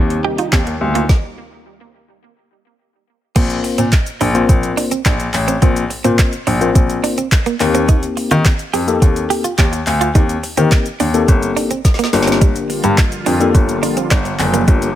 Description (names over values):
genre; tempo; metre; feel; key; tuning
dance-pop; 106 BPM; 4/4; straight; Bb major; A4 = 444 Hz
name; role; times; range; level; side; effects
mellow tine electric piano; accompaniment; 0.0-14.9 s; Bb3 to C5; -19 LUFS; left 5 dB; sidechain pumping
filtered supersaw swell; sustained chords; 0.0-1.1, 12.4-15.0 s; C3 to G4; -24 LUFS; right 2 dB; phaser, sidechain pumping
warm baby grand piano; bass; 0.0-14.9 s; Gb1 to Eb3; -18 LUFS; left 1 dB; sidechain pumping
smooth R&B drum kit; drums; 0.1-15.0 s; crash cymbal, handclaps, hi-hat, kick drum, shaker, snare drum; -15 LUFS; equal; none
wide unison pluck; arpeggios; 0.2-1.0 s; G3 to G4; -27 LUFS; right 5 dB; sidechain pumping, tape echo
direct-recorded clean electric guitar; riff; 0.2-14.8 s; G3 to G4; -21 LUFS; right 8 dB; wide subtle chorus
room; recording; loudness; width
little or no reverb; none; -12 LUFS; side -12 dB against mid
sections
0.0-3.4 A section; 3.4-15.0 B section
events
stop 1.1-3.4; drum fill 11.8-12.4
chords
0.0 Eb6; 3.1 N.C.; 3.4 Bbsus2; 7.6 Eb6; 12.1 Gm7